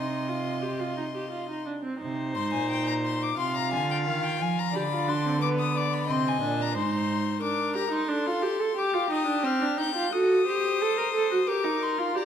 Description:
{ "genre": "classical, baroque-style fugue for string quartet", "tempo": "88 BPM", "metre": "4/4", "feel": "straight", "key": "C minor", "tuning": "A4 = 440 Hz", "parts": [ { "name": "warm violin", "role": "melody", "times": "0.0-12.2 s", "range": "F5 to G6", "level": "-31 LUFS", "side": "left 8 dB", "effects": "none" }, { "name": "rich violin", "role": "second line", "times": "0.0-12.2 s", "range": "G4 to F5", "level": "-33 LUFS", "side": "left 3 dB", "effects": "none" }, { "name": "warm viola", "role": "accompaniment", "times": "0.0-12.2 s", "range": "B3 to Bb4", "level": "-28 LUFS", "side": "right 2 dB", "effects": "none" }, { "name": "rich cello", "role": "bass", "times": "0.0-7.4 s", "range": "Ab2 to F3", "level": "-31 LUFS", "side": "right 4 dB", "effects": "none" } ], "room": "wet recital hall reverb, RT60 1.5 s", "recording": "none", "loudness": "-24 LUFS", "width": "side -8 dB against mid", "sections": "0.0-2.0 A section; 2.0-12.2 B section", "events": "none", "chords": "0.0 Cm; 3.4 Dm7b5/C; 4.7 Bdim/D; 6.1 Cm; 7.4 Gm/D; 8.8 Cmadd9; 10.1 F#dim7; 11.5 Gm", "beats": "0.64 1.33 | 2.02 2.70 3.38 4.06 | 4.74 5.41 6.08 6.75 | 7.42 8.10 8.78 9.45 | 10.13 10.81 11.49 12.18" }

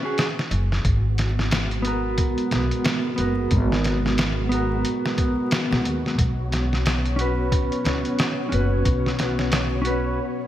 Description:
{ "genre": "trip hop", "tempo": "90 BPM", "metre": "4/4", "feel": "swing 59% on 16ths", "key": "G# minor", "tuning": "A4 = 441 Hz", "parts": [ { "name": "mellow electric guitar", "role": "accompaniment", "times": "0.0-10.2 s", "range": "B3 to B4", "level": "-26 LUFS", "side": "equal", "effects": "tremolo, vintage 12-bit sampler grit, tape echo" }, { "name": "trip hop sampler-style drum kit", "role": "drums", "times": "0.2-10.0 s", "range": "hi-hat, kick drum, snare drum", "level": "-24 LUFS", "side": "equal", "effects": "small room ambience, gated reverb" }, { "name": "upright bass", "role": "bass", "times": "0.5-10.2 s", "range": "F#1 to D#2", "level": "-24 LUFS", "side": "equal", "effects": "none" }, { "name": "string machine, cellos", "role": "sustained chords", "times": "0.8-10.5 s", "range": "G#3 to C#5", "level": "-28 LUFS", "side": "equal", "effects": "ensemble chorus" } ], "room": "light reverb", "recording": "bright 1980s-style digital production, vinyl crackle", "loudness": "-20 LUFS", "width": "side -12 dB against mid", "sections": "0.0-10.5 A section", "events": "break 10.2", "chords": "0.0 Bsus2 (rootless); 0.9 G#m7; 6.2 Bsus2", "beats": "0.18 | 0.85 1.52 2.19 2.85 | 3.52 4.18 4.85 5.52 | 6.18 6.85 7.52 8.19 | 8.85 9.52 10.19" }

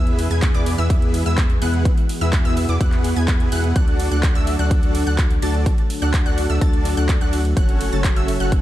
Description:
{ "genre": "EDM, festival progressive house", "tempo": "126 BPM", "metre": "4/4", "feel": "straight", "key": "unclear", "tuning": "A4 = 440 Hz", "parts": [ { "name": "lush unison pad", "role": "sustained chords", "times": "0.0-8.6 s", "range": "B2 to F#4", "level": "-28 LUFS", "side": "equal", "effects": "chorus, sidechain pumping" }, { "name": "wide unison pluck", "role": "arpeggios", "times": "0.0-8.6 s", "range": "D6 to A6", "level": "-31 LUFS", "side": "equal", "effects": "sidechain pumping, tape echo" }, { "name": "dense compressed supersaw", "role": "riff", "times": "0.0-8.6 s", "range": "B3 to A5", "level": "-25 LUFS", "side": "equal", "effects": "sidechain pumping, tape echo" }, { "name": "saturated sub bass", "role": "bass", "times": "0.0-8.6 s", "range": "F#1 to E2", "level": "-21 LUFS", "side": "equal", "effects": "sidechain pumping" }, { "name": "big-room dance drum kit", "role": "drums", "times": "0.1-8.6 s", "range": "handclaps, hi-hat, ride cymbal", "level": "-30 LUFS", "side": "right 1 dB", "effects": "overdrive, studio reverb" }, { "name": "electronic kick drum", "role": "drums", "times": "0.4-8.6 s", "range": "none", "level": "-18 LUFS", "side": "equal", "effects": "overdrive, studio reverb" } ], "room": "digital ambience", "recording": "dark, warm production", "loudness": "-16 LUFS", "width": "side -14 dB against mid", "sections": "0.0-8.6 A section", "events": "none", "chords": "0.0 E; 3.8 D; 7.6 F#m", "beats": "0.42 0.90 1.38 | 1.85 2.33 2.81 3.28 | 3.76 4.24 4.71 5.19 | 5.66 6.14 6.62 7.09 | 7.57 8.04 8.52" }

